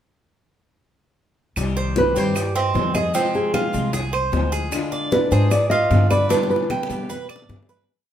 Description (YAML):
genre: latin, Cuban son and guajira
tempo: 152 BPM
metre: 4/4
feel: straight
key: C harmonic minor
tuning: A4 = 440 Hz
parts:
  - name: picked steel-string acoustic guitar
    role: accompaniment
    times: 1.6-7.9 s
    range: B2 to G4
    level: -27 LUFS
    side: left 4 dB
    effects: none
  - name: upright bass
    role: bass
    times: 1.6-7.8 s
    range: C2 to B2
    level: -22 LUFS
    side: equal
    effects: none
  - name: bongos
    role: percussion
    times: 1.6-7.8 s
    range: none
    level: -30 LUFS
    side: left 5 dB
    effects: none
  - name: claves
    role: percussion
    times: 1.6-7.5 s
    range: none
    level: -35 LUFS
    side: right 3 dB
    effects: none
  - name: congas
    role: percussion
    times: 1.6-7.9 s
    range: none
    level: -29 LUFS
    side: left 3 dB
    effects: none
  - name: maracas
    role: percussion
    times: 1.6-7.9 s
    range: none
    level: -38 LUFS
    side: right 3 dB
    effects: none
  - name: Cuban tres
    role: arpeggios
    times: 1.8-7.9 s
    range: C4 to D5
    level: -25 LUFS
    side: right 4 dB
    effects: none
  - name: nylon-string guitar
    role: melody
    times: 2.0-7.3 s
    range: Ab4 to Eb5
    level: -21 LUFS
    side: right 1 dB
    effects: none
room: moderate large studio reverb, RT60 0.9 s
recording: band playing live in one room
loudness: -18 LUFS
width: side -10 dB against mid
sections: 1.6-7.9 verse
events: fade-out 6.3-7.9; drum fill 6.3-7.9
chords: 1.6 Cm; 3.1 Fm; 4.7 Ddim; 6.3 G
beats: | 1.57 1.96 2.36 2.75 | 3.15 3.54 3.94 4.33 | 4.72 5.12 5.51 5.91 | 6.30 6.70 7.09 7.49